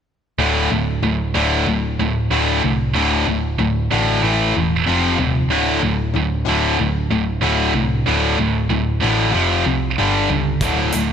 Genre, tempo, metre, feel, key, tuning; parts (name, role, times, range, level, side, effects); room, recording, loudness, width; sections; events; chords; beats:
hard rock; 94 BPM; 4/4; straight; D minor; A4 = 440 Hz
distorted electric guitar; riff; 0.4-11.1 s; D2 to A3; -21 LUFS; left 10 dB; overdrive
scooped high-gain guitar; riff; 0.4-11.1 s; D2 to A3; -19 LUFS; right 8 dB; distortion
hollow-body short-scale picked electric bass; bass; 0.4-11.1 s; D1 to C#2; -21 LUFS; equal
big rock drum kit; drums; 10.6-11.1 s; hi-hat, kick drum; -24 LUFS; right 1 dB
light reverb, small room ambience; bright 1980s-style digital production; -16 LUFS; side -8 dB against mid
0.4-11.1 A section
0.4 D5; 4.2 A5; 4.9 F5; 5.5 D5; 9.3 F5; 10.0 G5; 10.6 D5
| 0.39 1.03 1.67 2.31 | 2.95 3.59 4.23 4.87 | 5.51 6.15 6.79 7.43 | 8.06 8.70 9.34 9.98 | 10.62